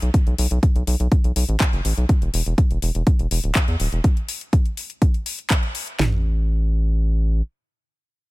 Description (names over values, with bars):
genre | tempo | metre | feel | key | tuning
melodic techno | 123 BPM | 4/4 | straight | unclear | A4 = 440 Hz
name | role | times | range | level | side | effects
round analog bass | bass | 0.0-7.4 s | D1 to E2 | -20 LUFS | equal | sidechain pumping
house drum kit | drums | 0.0-6.0 s | handclaps, hi-hat | -27 LUFS | left 2 dB | overdrive
house drum kit | drums | 0.1-6.1 s | kick drum, snare drum, toms | -17 LUFS | equal | overdrive
room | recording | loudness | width
little or no reverb | none | -18 LUFS | side -20 dB against mid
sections
0.0-6.0 A section; 6.0-8.3 B section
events
drop 0.0-6.0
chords
none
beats
| 0.14 0.63 1.12 1.60 | 2.09 2.58 3.07 3.56 | 4.04 4.53 5.02 5.51 | 5.99 6.48 6.97